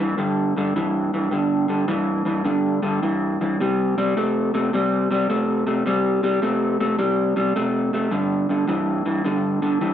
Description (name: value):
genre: blues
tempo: 106 BPM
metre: 4/4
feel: swing 66% on 8ths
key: unclear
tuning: A4 = 436 Hz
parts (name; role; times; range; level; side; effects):
- electric guitar through a small old amp; solo; 0.0-9.9 s; G2 to A3; -19 LUFS; equal; analog delay
room: moderate large studio reverb, RT60 1.0 s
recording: band playing live in one room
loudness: -19 LUFS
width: side -10 dB against mid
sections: 0.0-9.9 A section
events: none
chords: 0.0 G5; 3.6 C5; 8.1 G5